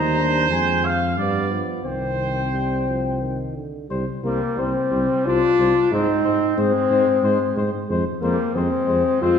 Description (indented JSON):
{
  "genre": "classical, brass quintet",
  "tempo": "90 BPM",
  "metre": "3/4",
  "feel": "straight",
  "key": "C minor",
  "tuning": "A4 = 440 Hz",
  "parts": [
    { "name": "warm trumpet", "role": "melody", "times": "0.0-9.4 s", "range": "C5 to Bb5", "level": "-28 LUFS", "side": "left 5 dB", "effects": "none" },
    { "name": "clear trumpet", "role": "second line", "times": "0.0-9.4 s", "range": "G3 to F5", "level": "-26 LUFS", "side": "right 5 dB", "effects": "none" },
    { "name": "dark trombone", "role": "accompaniment", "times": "0.0-9.4 s", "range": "D3 to Ab3", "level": "-30 LUFS", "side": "right 4 dB", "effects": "none" },
    { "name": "warm French horn", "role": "accompaniment", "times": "0.0-9.4 s", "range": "Bb3 to F4", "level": "-21 LUFS", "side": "left 3 dB", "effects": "none" },
    { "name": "dark bass trombone", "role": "bass", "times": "0.0-9.4 s", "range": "C2 to Ab2", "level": "-24 LUFS", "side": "equal", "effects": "none" }
  ],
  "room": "wet scoring stage reverb, RT60 1.5 s",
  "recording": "recorded in a church or concert hall",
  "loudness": "-18 LUFS",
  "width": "side -7 dB against mid",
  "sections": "0.0-3.9 A section; 3.9-9.4 B section",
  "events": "none",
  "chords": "0.0 Cm/Eb; 0.5 Fm; 1.2 G7; 1.9 Cm; 3.9 C5; 5.9 Ab; 7.9 Fm",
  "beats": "0.51 1.17 | 1.85 2.54 3.23 | 3.91 4.58 5.26 | 5.92 6.58 7.24 | 7.89 8.55 9.22"
}